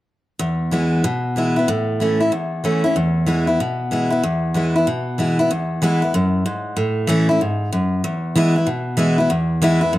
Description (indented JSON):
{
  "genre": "rock",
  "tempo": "189 BPM",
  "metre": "4/4",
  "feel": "swing 64% on 8ths",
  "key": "E major",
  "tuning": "A4 = 439 Hz",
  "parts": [
    { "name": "picked steel-string acoustic guitar", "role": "solo", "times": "0.4-10.0 s", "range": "E2 to E4", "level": "-16 LUFS", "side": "equal", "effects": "none" }
  ],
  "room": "moderate spring reverb, RT60 1.3 s, studio ambience",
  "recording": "none",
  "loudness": "-17 LUFS",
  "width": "side -15 dB against mid",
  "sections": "0.4-5.5 A section; 5.5-10.0 B section",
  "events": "none",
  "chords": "0.4 E; 1.7 A; 3.0 E; 6.8 A; 8.0 E"
}